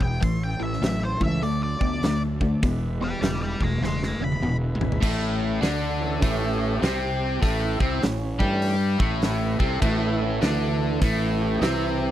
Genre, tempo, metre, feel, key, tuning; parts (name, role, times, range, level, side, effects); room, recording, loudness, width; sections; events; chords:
blues rock power trio and southern rock; 100 BPM; 4/4; swing 63% on 8ths; A4 = 440 Hz
octave-fuzz lead guitar; melody; 0.0-4.5 s; C5 to C6; -32 LUFS; left 1 dB; wah, distortion, tape echo
tonewheel organ; sustained chords; 0.0-12.1 s; E3 to C#5; -32 LUFS; right 4 dB; overdrive, slow rotary speaker
crunchy overdriven guitar; riff; 0.0-12.1 s; E2 to G4; -25 LUFS; left 1 dB
fuzz fingered electric bass; bass; 0.0-12.1 s; E1 to G2; -28 LUFS; equal; overdrive
big rock drum kit; drums; 0.0-11.8 s; crash cymbal, hi-hat, kick drum, snare drum, toms; -27 LUFS; equal
little or no reverb; dry, close 1970s-style studio recording; -22 LUFS; side -12 dB against mid
0.0-5.0 A section; 5.0-12.1 B section
drum fill 3.8-5.0; tonewheel organ solo 5.0-12.1
0.2 A; 1.4 D; 2.6 E; 5.0 A